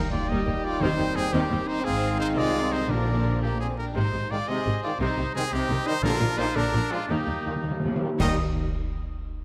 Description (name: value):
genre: cinematic, heroic adventure film score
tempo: 105-118 BPM (dotted quarters)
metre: 6/8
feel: straight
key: Eb major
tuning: A4 = 439 Hz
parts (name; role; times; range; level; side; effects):
- warm symphonic violin section; melody; 0.0-8.4 s; Ab3 to Eb5; -39 LUFS; equal; none
- rich symphonic violin section; second line; 0.0-8.4 s; Ab3 to Bb4; -41 LUFS; equal; none
- warm oboe; second line; 0.0-8.4 s; D4 to G5; -37 LUFS; equal; none
- rich symphonic viola section; accompaniment; 0.0-8.4 s; C3 to Eb4; -35 LUFS; equal; none
- bright trombone section; sustained chords; 0.0-8.4 s; Bb2 to Ab3; -39 LUFS; equal; none
- mellow French horn section; sustained chords; 0.0-8.4 s; G3 to Eb4; -35 LUFS; equal; none
- clear trumpet; stabs; 0.0-8.4 s; F4 to Eb5; -33 LUFS; equal; none
- timpani; percussion; 0.0-3.4, 6.0-8.4 s; Bb2 to Eb3; -35 LUFS; equal; none
- rich studio double bass section; bass; 0.1-8.4 s; Ab1 to Eb2; -33 LUFS; equal; none
- rich symphonic cello section; bass; 0.1-8.4 s; Eb2 to C3; -34 LUFS; equal; none
- large flute ensemble; second line; 3.4-4.0, 8.2-8.4 s; G5 to Eb6; -42 LUFS; equal; none
- clash cymbals and concert bass drum; percussion; 8.2-8.9 s; none; -34 LUFS; equal; none
room: moderate scoring stage reverb, RT60 2.1 s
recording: none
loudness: -26 LUFS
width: mono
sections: 0.0-8.2 A section; 8.2-9.3 B section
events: slowing down 5.5-8.2; timpani fill 7.1-8.2; band accent 8.2-8.6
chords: 0.0 Eb; 0.8 Cm/Eb; 1.9 Ab; 2.9 Bb; 4.0 Ab; 5.0 Cm; 6.0 Bb; 7.1 Eb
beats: 0.30 | 0.82 1.33 | 1.85 2.37 | 2.90 3.43 | 3.96 4.49 | 5.01 5.53 | 6.04 6.55 | 7.09 7.64 | 8.20 8.76